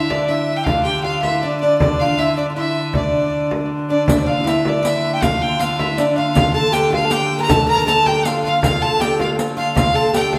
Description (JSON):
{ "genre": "medieval dance", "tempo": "158 BPM", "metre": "3/4", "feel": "straight", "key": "D minor", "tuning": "A4 = 440 Hz", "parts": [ { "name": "clear fiddle", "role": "melody", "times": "0.0-10.4 s", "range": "D5 to Bb5", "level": "-22 LUFS", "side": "equal", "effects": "none" }, { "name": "breathy mellow tenor recorder", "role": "second line", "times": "0.0-10.4 s", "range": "C5 to Bb5", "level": "-25 LUFS", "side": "equal", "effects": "none" }, { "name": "oud", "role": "second line", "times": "0.0-10.4 s", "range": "D4 to Bb4", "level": "-24 LUFS", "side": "equal", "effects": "none" }, { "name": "clear hurdy-gurdy", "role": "drone", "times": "0.0-10.4 s", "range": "D3", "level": "-28 LUFS", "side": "equal", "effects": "none" }, { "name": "frame drum", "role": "percussion", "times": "0.1-10.4 s", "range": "none", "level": "-24 LUFS", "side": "equal", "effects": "none" }, { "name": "riq", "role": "percussion", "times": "4.1-10.3 s", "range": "none", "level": "-29 LUFS", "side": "equal", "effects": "none" } ], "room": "wet stone room reverb, RT60 1.3 s", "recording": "band playing live in one room", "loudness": "-17 LUFS", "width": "mono", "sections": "0.0-4.1 A section; 4.1-10.4 A section", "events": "none", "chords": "none" }